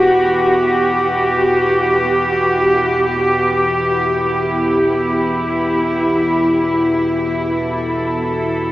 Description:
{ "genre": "dark ambient drone", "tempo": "free time", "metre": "none", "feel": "none", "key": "E minor", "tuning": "A4 = 440 Hz", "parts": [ { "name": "dark chamber cello section", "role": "sustained chords", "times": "0.0-8.7 s", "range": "E3 to A4", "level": "-14 LUFS", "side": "equal", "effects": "none" }, { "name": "deep rumbling drone", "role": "drone", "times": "0.0-8.7 s", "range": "E2 to B2", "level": "-25 LUFS", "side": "equal", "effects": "built-in reverb" } ], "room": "wet huge ambient reverb, RT60 7.7 s", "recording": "small speaker sound", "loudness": "-14 LUFS", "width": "side -16 dB against mid", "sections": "0.0-8.7 A section", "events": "fade-out on cello section 0.0-8.7", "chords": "0.0 Emadd9", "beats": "free time" }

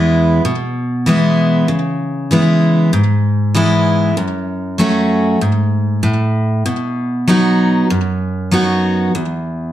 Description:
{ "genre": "country", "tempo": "97 BPM", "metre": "4/4", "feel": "straight", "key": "unclear", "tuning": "A4 = 440 Hz", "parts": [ { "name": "picked steel-string acoustic guitar", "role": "solo", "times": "0.0-9.7 s", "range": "E2 to F#4", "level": "-13 LUFS", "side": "equal", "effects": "slapback echo" } ], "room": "light reverb", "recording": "dark, warm production", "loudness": "-13 LUFS", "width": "side -12 dB against mid", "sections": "0.0-9.7 A section", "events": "none", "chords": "0.0 E; 1.7 C#m7; 4.2 F#m; 6.7 B; 9.1 N.C.", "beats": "0.44 1.07 | 1.69 2.31 2.93 3.55 | 4.17 4.79 5.41 6.04 | 6.66 7.28 7.90 8.52 | 9.14" }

